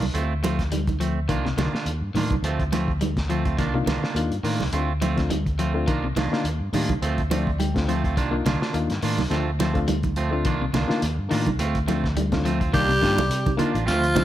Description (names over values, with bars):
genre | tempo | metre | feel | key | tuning
afrobeat | 105 BPM | 4/4 | swing 55% on 16ths | C dorian | A4 = 440 Hz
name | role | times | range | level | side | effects
electric guitar at the edge of break-up | arpeggios | 0.0-14.2 s | C3 to G3 | -30 LUFS | left 5 dB | none
clean electric guitar | stabs | 0.0-14.2 s | Eb3 to F4 | -29 LUFS | right 5 dB | none
fingered electric bass | bass | 0.0-14.2 s | A1 to C3 | -26 LUFS | equal | none
congas | percussion | 0.0-14.2 s | none | -30 LUFS | right 6 dB | none
cloth-damped thuddy drum kit | drums | 0.1-14.2 s | hi-hat, kick drum, snare drum | -28 LUFS | equal | none
barky reed electric piano | accompaniment | 3.7-14.2 s | A3 to G5 | -29 LUFS | left 4 dB | overdrive
raspy tenor saxophone | melody | 12.7-14.2 s | F4 to G4 | -23 LUFS | equal | none
dark trombone | second line | 12.7-14.2 s | F3 to G3 | -29 LUFS | right 2 dB | none
room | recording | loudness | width
light reverb | none | -21 LUFS | side -12 dB against mid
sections
0.0-12.7 A section; 12.7-14.2 B section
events
reed electric piano fill 7.0-8.2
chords
0.1 Dm7; 1.3 Cm11; 2.4 Dm7; 3.6 Cm11; 4.7 Dm7; 5.9 Cm11; 7.0 Dm7; 8.2 Cm11; 9.3 Dm7; 10.5 Cm11; 11.6 Dm7; 12.7 Cm11